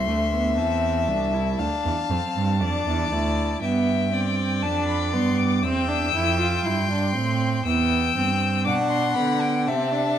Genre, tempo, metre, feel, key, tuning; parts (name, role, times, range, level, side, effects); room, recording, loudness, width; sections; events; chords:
classical, baroque-style fugue for string quartet; 59 BPM; 4/4; straight; A4 = 440 Hz
clear violin; melody; 0.0-10.2 s; G5 to E6; -28 LUFS; left 8 dB
clear violin; second line; 0.0-10.2 s; D5 to G5; -28 LUFS; left 4 dB
rich viola; accompaniment; 0.0-10.2 s; A3 to F4; -26 LUFS; right 2 dB
rich cello; bass; 0.0-10.2 s; C2 to D3; -25 LUFS; right 3 dB
wet recital hall reverb, RT60 1.6 s; dark, warm production; -20 LUFS; side -10 dB against mid
0.0-10.2 A section
0.0 Am/C; 1.6 Dm; 3.6 G; 5.6 C/E; 7.7 Em; 9.7 Am